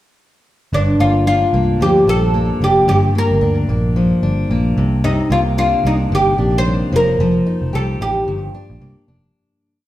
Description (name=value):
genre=indie pop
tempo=111 BPM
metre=4/4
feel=swing 60% on 16ths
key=G minor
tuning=A4 = 440 Hz
part: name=oud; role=melody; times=0.7-9.0 s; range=D4 to C5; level=-16 LUFS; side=equal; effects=tape echo
part: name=fingerpicked steel-string acoustic guitar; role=accompaniment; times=0.7-9.9 s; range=G2 to G4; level=-19 LUFS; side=left 1 dB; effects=warbly pitch drift
part: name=vintage muted picked electric bass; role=bass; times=0.7-9.3 s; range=F1 to D2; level=-18 LUFS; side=equal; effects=none
room=wet stone room reverb, RT60 1.2 s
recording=band playing live in one room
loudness=-13 LUFS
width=side -14 dB against mid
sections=0.7-9.3 A section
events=fade-out 7.2-9.3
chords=0.7 Gm7; 4.8 Cm9; 6.9 F9sus4; 8.3 Gm7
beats=| 0.73 1.27 1.81 2.35 | 2.89 3.43 3.96 4.50 | 5.04 5.58 6.12 6.66 | 7.20 7.73 8.27 8.81